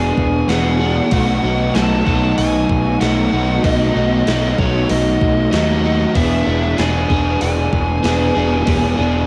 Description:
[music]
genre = rock, shoegaze and dream pop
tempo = 95 BPM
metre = 4/4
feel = straight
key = unclear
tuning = A4 = 442 Hz
[part]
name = fuzz lead guitar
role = melody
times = 0.0-9.3 s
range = C#5 to A5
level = -25 LUFS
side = equal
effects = distortion, cassette tape
[part]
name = crunchy overdriven guitar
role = riff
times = 0.0-9.3 s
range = B2 to G#4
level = -19 LUFS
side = equal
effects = subtle chorus, cassette tape
[part]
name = fuzz picked electric bass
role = bass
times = 0.0-9.2 s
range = E1 to D#2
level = -21 LUFS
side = equal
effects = overdrive
[part]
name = gated 80s digital drum machine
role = drums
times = 0.2-8.8 s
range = hi-hat, kick drum, snare drum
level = -24 LUFS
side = equal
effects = gated reverb, gated reverb snare
[sound]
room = digital ambience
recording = home recording on cassette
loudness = -16 LUFS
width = mono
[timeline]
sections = 0.0-9.3 A section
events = none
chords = 0.0 E7; 1.1 B7; 6.2 E7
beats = 0.49 | 1.12 1.75 2.38 3.01 | 3.64 4.27 4.90 5.53 | 6.16 6.79 7.42 8.04 | 8.67

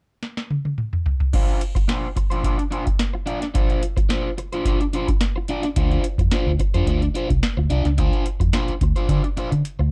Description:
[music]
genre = funk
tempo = 108 BPM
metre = 4/4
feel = straight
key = D minor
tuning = A4 = 439 Hz
[part]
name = booming analog drum machine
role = drums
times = 0.2-9.8 s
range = crash cymbal, hi-hat, kick drum, snare drum, toms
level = -24 LUFS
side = equal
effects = none
[part]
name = crunchy overdriven guitar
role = accompaniment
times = 1.3-9.8 s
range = D4 to D5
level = -28 LUFS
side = equal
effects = phaser
[part]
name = vintage muted fingered electric bass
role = bass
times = 5.8-9.9 s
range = C2 to D3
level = -23 LUFS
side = equal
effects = none
[sound]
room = little or no reverb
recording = dark, warm production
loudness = -21 LUFS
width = mono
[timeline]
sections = 0.0-1.3 A section; 1.3-9.9 B section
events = drum fill 0.2-1.3, 9.1-9.9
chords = 0.0 N.C.; 1.3 Dm7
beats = 0.22 0.78 | 1.33 1.89 2.44 3.00 | 3.55 4.10 4.66 5.21 | 5.77 6.32 6.88 7.43 | 7.99 8.54 9.09 9.65

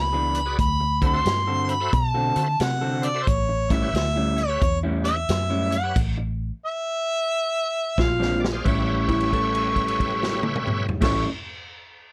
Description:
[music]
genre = electric blues shuffle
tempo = 89 BPM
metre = 4/4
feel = swing 64% on 8ths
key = A mixolydian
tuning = A4 = 440 Hz
[part]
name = warm harmonica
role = melody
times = 0.0-11.3 s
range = C5 to C#6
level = -27 LUFS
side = equal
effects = overdrive
[part]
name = vintage muted fingered electric bass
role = bass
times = 0.0-11.3 s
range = A1 to D3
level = -29 LUFS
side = equal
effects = none
[part]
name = electric guitar through a small old amp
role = riff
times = 0.1-11.3 s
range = A2 to A4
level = -30 LUFS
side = equal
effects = none
[part]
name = bright tonewheel organ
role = accompaniment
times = 0.3-11.3 s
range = F#4 to F5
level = -34 LUFS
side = equal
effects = slow rotary speaker, overdrive, chorus vibrato
[part]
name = vintage drum kit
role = drums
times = 0.3-11.2 s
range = crash cymbal, hi-hat, kick drum, snare drum, toms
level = -29 LUFS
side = equal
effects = none
[part]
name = clean lap steel guitar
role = second line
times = 8.0-11.3 s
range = E4 to A4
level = -32 LUFS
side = equal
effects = none
[sound]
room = light reverb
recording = none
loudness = -23 LUFS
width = mono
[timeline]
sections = 0.0-8.7 A section; 8.7-11.3 B section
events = stop 6.0-8.0; drum fill 8.0-8.7; held note 8.7-10.9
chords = 0.0 E7; 0.6 D7; 3.3 A7; 8.0 Bb9; 8.7 A7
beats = | 0.58 1.26 1.93 2.60 | 3.27 3.95 4.62 5.29 | 5.96 6.64 7.31 7.98 | 8.65 9.33 10.00 10.67

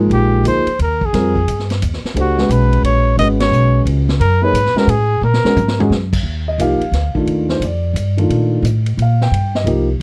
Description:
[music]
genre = modal jazz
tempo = 176 BPM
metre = 3/4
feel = swing 64% on 8ths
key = Eb lydian from 6.2 s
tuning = A4 = 440 Hz
[part]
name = dark baby grand piano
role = accompaniment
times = 0.0-9.9 s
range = Eb3 to G5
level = -20 LUFS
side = equal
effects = none
[part]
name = upright bass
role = bass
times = 0.0-10.0 s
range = Ab1 to Bb2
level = -18 LUFS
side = equal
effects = none
[part]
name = mellow trumpet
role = melody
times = 0.1-5.9 s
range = Gb4 to Eb5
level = -20 LUFS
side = equal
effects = none
[part]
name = vintage drum kit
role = drums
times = 0.1-9.8 s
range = crash cymbal, hi-hat, kick drum, ride cymbal, snare drum, toms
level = -27 LUFS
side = equal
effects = none
[sound]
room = little or no reverb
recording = dry, close 1970s-style studio recording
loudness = -15 LUFS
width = mono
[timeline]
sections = 0.0-6.2 A section; 6.2-10.0 B section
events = band accent 3.3; drum fill 5.2-5.9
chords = 0.0 Bb7sus4; 2.1 Db7sus4; 5.2 Gbadd9; 6.2 Ebmaj9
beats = | 0.10 0.44 0.78 | 1.12 1.47 1.81 | 2.15 2.49 2.83 | 3.17 3.52 3.86 | 4.20 4.54 4.88 | 5.22 5.57 5.91 | 6.25 6.59 6.93 | 7.27 7.62 7.96 | 8.30 8.64 8.98 | 9.32 9.67 10.01

